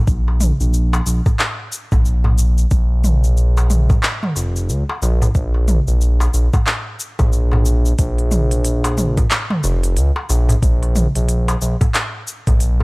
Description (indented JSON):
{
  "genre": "organic downtempo",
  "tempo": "91 BPM",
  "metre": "4/4",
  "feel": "swing 60% on 16ths",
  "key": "Bb minor",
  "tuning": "A4 = 445 Hz",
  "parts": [
    { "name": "smooth synth bass", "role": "bass", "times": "0.1-12.8 s", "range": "F1 to Db2", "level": "-15 LUFS", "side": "equal", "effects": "sidechain pumping" },
    { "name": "electronic kick drum", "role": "drums", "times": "0.1-12.6 s", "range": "none", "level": "-16 LUFS", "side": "equal", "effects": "overdrive" },
    { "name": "organic electronic drum kit", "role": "drums", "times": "0.1-12.8 s", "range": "cabasa, handclaps, hi-hat, toms", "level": "-21 LUFS", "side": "equal", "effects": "overdrive" },
    { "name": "darbuka", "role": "percussion", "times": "0.3-12.8 s", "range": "none", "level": "-23 LUFS", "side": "equal", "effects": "none" }
  ],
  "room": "digital ambience",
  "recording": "dry, gritty hardware recording",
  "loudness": "-14 LUFS",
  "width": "side -27 dB against mid",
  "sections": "0.0-12.8 A section",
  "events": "none",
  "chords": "none",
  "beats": "| 0.07 0.73 1.39 2.05 | 2.71 3.37 4.03 4.69 | 5.35 6.01 6.67 7.33 | 7.99 8.65 9.31 9.96 | 10.62 11.28 11.94 12.60"
}